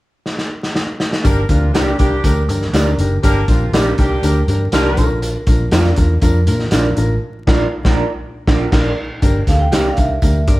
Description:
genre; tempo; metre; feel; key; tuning
uptempo 1960s-style soul; 120 BPM; 4/4; straight; G dorian; A4 = 440 Hz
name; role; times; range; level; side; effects
crunchy breakbeat drum kit; drums; 0.3-10.6 s; crash cymbal, hi-hat, kick drum, snare drum; -17 LUFS; equal; none
warm horn section; second line; 1.2-5.1 s; F3 to Bb4; -22 LUFS; right 1 dB; none
dark grand piano; accompaniment; 1.2-10.6 s; D4 to Bb4; -21 LUFS; left 2 dB; none
vintage muted fingered electric bass; bass; 1.2-10.6 s; F#1 to Bb2; -17 LUFS; equal; none
tambourine; percussion; 1.2-10.6 s; none; -36 LUFS; right 3 dB; none
congas; percussion; 1.3-10.6 s; none; -33 LUFS; right 1 dB; none
electric guitar through a small old amp; stabs; 1.7-9.9 s; D4 to D5; -22 LUFS; right 3 dB; phaser
vibraphone with medium hard mallets; melody; 9.5-10.6 s; D5 to G5; -21 LUFS; right 2 dB; none
room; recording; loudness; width
moderate large studio reverb, RT60 1.3 s; band playing live in one room, vinyl crackle; -13 LUFS; side -18 dB against mid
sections
0.0-1.2 A section; 1.2-9.2 B section; 9.2-10.6 C section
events
drum fill 0.3-1.2; band accent 7.2-9.2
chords
0.0 N.C.; 1.2 Gm; 5.0 Bb; 9.2 Gm

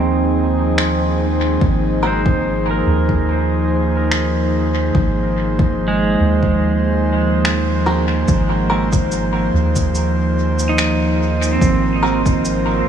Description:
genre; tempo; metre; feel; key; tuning
ambient dub; 72 BPM; 4/4; swing 54% on 16ths; Ab major; A4 = 440 Hz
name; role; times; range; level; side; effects
airy breathy pad; sustained chords; 0.0-12.9 s; F3 to C5; -19 LUFS; left 1 dB; chorus
pedal steel guitar; arpeggios; 0.0-12.9 s; Ab3 to C6; -22 LUFS; right 4 dB; low-pass filter, tape echo
soft dub sub bass; bass; 0.0-12.9 s; Ab1 to Eb2; -19 LUFS; right 1 dB; none
electronic finger snaps and shaker; drums; 0.8-12.6 s; none; -26 LUFS; equal; small room ambience, dub echo
electronic kick drum; drums; 1.6-12.4 s; none; -18 LUFS; equal; small room ambience
direct-recorded clean electric guitar; stabs; 2.0-2.2, 7.9-12.2 s; Ab3 to Bb4; -24 LUFS; equal; phaser, dub echo
room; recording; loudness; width
light reverb, digital ambience; small room ambience; -14 LUFS; side -8 dB against mid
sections
0.0-12.9 A section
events
filter sweep on pedal steel guitar 0.0-12.9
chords
0.0 Abadd9

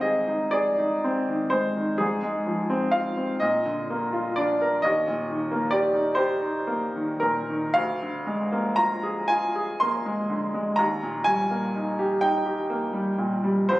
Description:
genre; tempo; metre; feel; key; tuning
classical, romantic nocturne for solo piano; 35-46 BPM (dotted quarters); 6/8; rubato; Eb major; A4 = 440 Hz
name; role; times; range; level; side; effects
bright upright piano; solo; 0.0-13.8 s; C2 to C6; -22 LUFS; equal; none
room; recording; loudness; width
moderate recital hall reverb, RT60 1.4 s; recorded on a phone in the room, club reverb, compression; -22 LUFS; side -18 dB against mid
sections
0.0-13.8 A section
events
none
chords
0.0 Ab; 2.0 Fm/Ab; 3.4 Bb; 4.8 Eb; 7.8 Bb7/D; 10.8 Eb

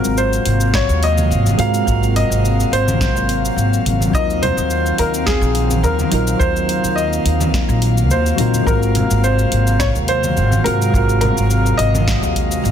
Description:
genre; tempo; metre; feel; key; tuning
sunset chillout; 106 BPM; 4/4; swing 54% on 16ths; unclear; A4 = 440 Hz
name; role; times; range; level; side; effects
dark grand piano; melody; 0.0-12.7 s; Ab4 to F5; -20 LUFS; left 1 dB; digital delay
soft electric-piano-like synth keys; accompaniment; 0.0-12.7 s; Gb3 to Bb4; -23 LUFS; moving between left 8 dB and right 5 dB; chorus, auto-pan, digital delay
airy breathy pad; sustained chords; 0.0-12.7 s; C3 to F5; -22 LUFS; equal; chorus
deep house drum kit; drums; 0.0-12.7 s; cabasa, hi-hat, snare drum; -25 LUFS; left 1 dB; none
upright bass; bass; 0.1-12.7 s; Ab1 to Ab2; -18 LUFS; equal; none
electronic kick drum; drums; 0.7-12.5 s; none; -21 LUFS; equal; none
congas; percussion; 1.2-12.0 s; none; -25 LUFS; equal; none
room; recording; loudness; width
light reverb, digital ambience; dense, heavily limited modern master; -14 LUFS; side -9 dB against mid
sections
0.0-12.7 A section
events
none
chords
0.0 Ab13; 4.1 Ebm69; 8.7 Ab13

